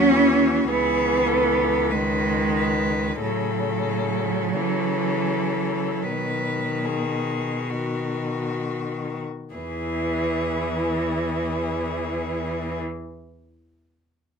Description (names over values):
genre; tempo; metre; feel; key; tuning
classical, lyrical piece for cello ensemble; 32-52 BPM; 4/4; rubato; E major; A4 = 440 Hz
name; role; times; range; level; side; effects
rich cello; melody; 0.0-12.8 s; F#4 to B4; -29 LUFS; left 6 dB; none
rich cello; second line; 0.0-12.8 s; E3 to C#4; -24 LUFS; right 4 dB; none
rich cello; accompaniment; 0.0-12.8 s; C#3 to F#3; -28 LUFS; left 4 dB; none
clear cello; bass; 0.0-12.8 s; C#2 to C#3; -29 LUFS; equal; none
room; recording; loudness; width
light reverb; minimal, uncompressed stereo recording; -21 LUFS; side -6 dB against mid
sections
0.0-9.5 A section; 9.5-14.4 B section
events
slowing down 0.0-9.5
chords
0.0 N.C.; 0.7 C#m7; 3.2 A; 6.0 B; 9.5 E